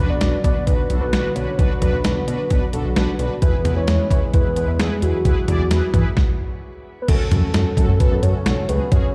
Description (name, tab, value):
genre	synth-pop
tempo	131 BPM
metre	4/4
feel	straight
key	F# minor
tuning	A4 = 440 Hz
part	soft octave-layered synth lead	melody	0.0-9.1 s	F#4 to D5	-28 LUFS	equal	chorus, shimmer reverb
part	mellow synth brass	accompaniment	0.0-9.1 s	C#4 to D5	-31 LUFS	equal	chorus, phaser, shimmer reverb
part	warm analog pad	sustained chords	0.0-9.1 s	C#3 to F#4	-31 LUFS	equal	chorus, shimmer reverb
part	chorused synth bass	bass	0.0-9.0 s	B1 to E3	-23 LUFS	equal	none
part	detuned 8-bit digital drum machine	drums	0.2-9.0 s	crash cymbal, hi-hat, kick drum, snare drum, toms	-21 LUFS	equal	none
room	light reverb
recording	played on a big sound system in a bare room, large studio reverb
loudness	-19 LUFS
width	mono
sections	0.0-7.1 A section; 7.1-9.1 B section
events	stop 6.2-7.1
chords	0.0 Bm; 3.4 Eadd9; 7.1 F#m